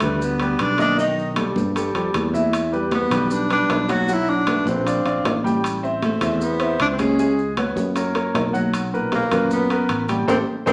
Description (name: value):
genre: Afro-Cuban jazz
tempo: 155 BPM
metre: 4/4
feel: straight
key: unclear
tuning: A4 = 439 Hz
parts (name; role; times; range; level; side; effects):
- warm tenor saxophone; melody; 0.0-10.7 s; A3 to F#4; -24 LUFS; equal; none
- clear baby grand piano; accompaniment; 0.0-10.7 s; Bb2 to Ab5; -26 LUFS; equal; none
- sustaining fretless electric bass; bass; 0.0-10.7 s; A1 to G2; -28 LUFS; equal; none
- congas; percussion; 0.0-10.7 s; none; -30 LUFS; equal; none
- maracas; percussion; 0.0-10.7 s; none; -46 LUFS; equal; none
- timbales; percussion; 0.0-10.7 s; none; -30 LUFS; equal; none
room: wet large studio reverb, RT60 0.9 s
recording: none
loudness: -21 LUFS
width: mono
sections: 0.0-10.7 A section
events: band accent 10.3-10.7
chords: 0.0 G; 1.0 Baug7; 2.5 Em9; 4.1 Bm7; 4.9 Bb69; 5.6 Am9; 7.2 C#5; 8.0 F#; 8.7 B5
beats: 0.21 0.60 | 0.98 1.37 1.76 2.15 | 2.54 2.92 3.31 3.70 | 4.09 4.48 4.86 5.25 | 5.64 6.03 6.42 6.80 | 7.19 7.58 7.97 8.36 | 8.74 9.13 9.52 9.90 | 10.29 10.68